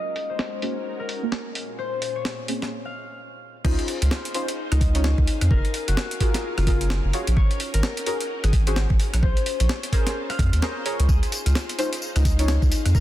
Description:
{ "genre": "UK garage, two-step garage", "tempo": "129 BPM", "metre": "4/4", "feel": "swing 60% on 16ths", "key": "Db major", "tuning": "A4 = 440 Hz", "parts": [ { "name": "concert harp", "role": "melody", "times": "0.0-13.0 s", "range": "Eb4 to F5", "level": "-32 LUFS", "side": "left 4 dB", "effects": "ping-pong delay" }, { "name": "soft string machine", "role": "sustained chords", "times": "0.0-13.0 s", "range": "Bb2 to F5", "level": "-37 LUFS", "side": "equal", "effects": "ensemble chorus, sidechain pumping" }, { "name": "breakbeat sampler-style drum kit", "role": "drums", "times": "0.2-13.0 s", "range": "crash cymbal, hi-hat, rim click, snare drum, tambourine", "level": "-30 LUFS", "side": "equal", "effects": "none" }, { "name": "deep mellow chord stab", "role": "stabs", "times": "0.6-12.5 s", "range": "Gb3 to Db5", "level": "-30 LUFS", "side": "equal", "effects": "chorus, ping-pong delay" }, { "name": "saturated sub bass", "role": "bass", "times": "3.6-13.0 s", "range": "Gb1 to F2", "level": "-21 LUFS", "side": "equal", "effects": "none" }, { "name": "electronic kick drum", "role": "drums", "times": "3.6-13.0 s", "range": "none", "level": "-21 LUFS", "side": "equal", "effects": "none" } ], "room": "digital ambience", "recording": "dense, heavily limited modern master, low-pass filter", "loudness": "-21 LUFS", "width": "side -14 dB against mid", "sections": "0.0-3.6 A section; 3.6-13.0 B section", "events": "break 2.7-3.6; drop 3.6-13.0", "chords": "0.0 Ab9sus4; 1.6 Bbm9; 3.6 Dbmaj9; 5.5 Gbmaj9; 7.4 Ab9sus4; 9.0 Bbm9; 11.1 Dbmaj9", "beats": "0.39 0.86 1.32 | 1.79 2.25 2.72 3.18 | 3.65 4.11 4.58 5.04 | 5.51 5.97 6.44 6.90 | 7.37 7.83 8.30 8.76 | 9.23 9.69 10.16 10.62 | 11.09 11.55 12.02 12.48 | 12.95" }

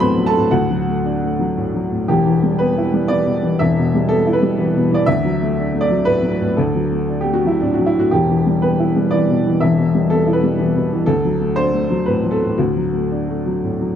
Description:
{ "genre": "neoclassical minimalist piano", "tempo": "112-125 BPM", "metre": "3/4", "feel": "rubato", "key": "E minor", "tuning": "A4 = 440 Hz", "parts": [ { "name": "warm upright piano", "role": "solo", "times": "0.0-14.0 s", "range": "E1 to C6", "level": "-15 LUFS", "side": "equal", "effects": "tape echo" } ], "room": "light reverb", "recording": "close, detailed microphones", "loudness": "-15 LUFS", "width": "side -9 dB against mid", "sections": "0.0-2.1 A section; 2.1-14.0 A section", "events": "none", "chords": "0.0 D; 2.1 Em; 5.1 D; 8.1 Em; 11.1 D", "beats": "0.01 | 0.53 1.05 1.58 | 2.11 2.61 3.12 | 3.61 4.10 4.60 | 5.08 5.57 6.07 | 6.58 7.09 7.61 | 8.12 8.63 9.12 | 9.62 10.11 10.59 | 11.07 11.56 12.07 | 12.58 13.11 13.63" }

